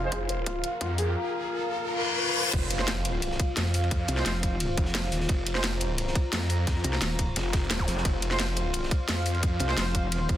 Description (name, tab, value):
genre	dark technical drum and bass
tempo	174 BPM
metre	4/4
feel	straight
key	unclear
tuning	A4 = 440 Hz
part	dark analog pad	sustained chords	0.0-10.4 s	F4 to Bb5	-33 LUFS	left 2 dB	chorus, sidechain pumping
part	mellow brass ensemble	stabs	0.0-0.1, 2.8-5.6, 8.3-9.8 s	Ab3 to C5	-35 LUFS	right 3 dB	digital delay
part	snarling distorted saw bass	bass	0.0-9.6 s	F1 to F2	-29 LUFS	equal	distortion, overdrive
part	riser, reverse cymbal, impact and zap	sound effects	0.0-3.9, 7.8-7.9 s	none	-32 LUFS	left 1 dB	none
part	felt-muted upright piano	arpeggios	0.1-1.0 s	F4 to C5	-35 LUFS	left 1 dB	sidechain pumping, digital delay
part	drum and bass drum kit	drums	0.1-10.4 s	crash cymbal, hi-hat, snare drum	-30 LUFS	equal	overdrive, high-pass filter on hats, studio ambience, high-pass filter on snare, high-pass filter on cymbals
part	electronic kick drum	drums	0.1-10.4 s	none	-28 LUFS	equal	overdrive, high-pass filter on kick, studio ambience
part	crunchy breakbeat drum kit	drums	2.5-10.4 s	ride cymbal, snare drum	-38 LUFS	right 1 dB	high-pass filter on cymbals, studio ambience, high-pass filter on snare, high-pass filter on room
part	metallic wobble bass	bass	4.1-10.4 s	Eb1 to C2	-29 LUFS	equal	chorus
room	light reverb, small room ambience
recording	dense, heavily limited modern master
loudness	-25 LUFS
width	side -12 dB against mid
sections	0.0-2.5 A section; 2.5-10.4 B section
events	build-up 0.0-2.5; drum fill 0.0-1.2; riser 0.0-2.5; reverse cymbal 1.8-2.5; drop 2.5-10.4; impact 2.5-3.9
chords	0.0 N.C.; 2.5 F5